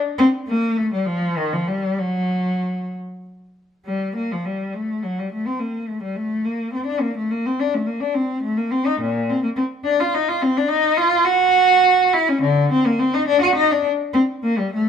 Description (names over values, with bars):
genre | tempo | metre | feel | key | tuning
classical, baroque-style suite movement for unaccompanied cello | 63-72 BPM (dotted quarters) | 6/8 | rubato | G minor | A4 = 435 Hz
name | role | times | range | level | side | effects
warm cello | solo | 0.2-14.9 s | Bb2 to F#4 | -18 LUFS | equal | none
room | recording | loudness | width
moderate stone room reverb, RT60 1.1 s | minimal, uncompressed stereo recording | -17 LUFS | side -7 dB against mid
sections
0.0-3.9 A section; 3.9-14.9 A section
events
none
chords
none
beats
| 0.20 1.08 | 2.01 2.94 | 3.88 4.75 | 5.61 6.46 | 7.31 8.16 | 9.01 9.85 | 10.70 11.54 | 12.43 13.29 | 14.16